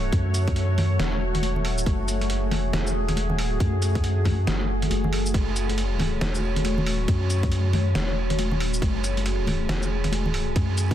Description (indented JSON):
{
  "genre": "deep dubstep",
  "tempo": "138 BPM",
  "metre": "4/4",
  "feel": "swing 61% on 16ths, half-time",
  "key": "F# minor",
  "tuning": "A4 = 440 Hz",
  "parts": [
    { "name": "deep dark ambient pad", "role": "sustained chords", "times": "0.0-10.9 s", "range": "A3 to C#5", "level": "-28 LUFS", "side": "equal", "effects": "chorus, built-in reverb" },
    { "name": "soft dub sub bass", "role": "bass", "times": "0.0-10.9 s", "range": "E1 to F#2", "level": "-25 LUFS", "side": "equal", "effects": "tube saturation" },
    { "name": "electronic kick drum", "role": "drums", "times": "0.1-10.9 s", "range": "none", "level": "-27 LUFS", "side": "equal", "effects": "none" },
    { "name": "trip hop sampler-style drum kit", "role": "drums", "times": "0.1-10.9 s", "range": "crash cymbal, hi-hat, shaker, snare drum", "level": "-30 LUFS", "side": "right 1 dB", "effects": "overdrive" },
    { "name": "congas", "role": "percussion", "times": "0.1-10.9 s", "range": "none", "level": "-31 LUFS", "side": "left 1 dB", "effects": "dub echo" }
  ],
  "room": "little or no reverb",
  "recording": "dense, heavily limited modern master",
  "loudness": "-22 LUFS",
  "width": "side -11 dB against mid",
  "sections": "0.0-10.9 A section",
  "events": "none",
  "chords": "0.0 F#m"
}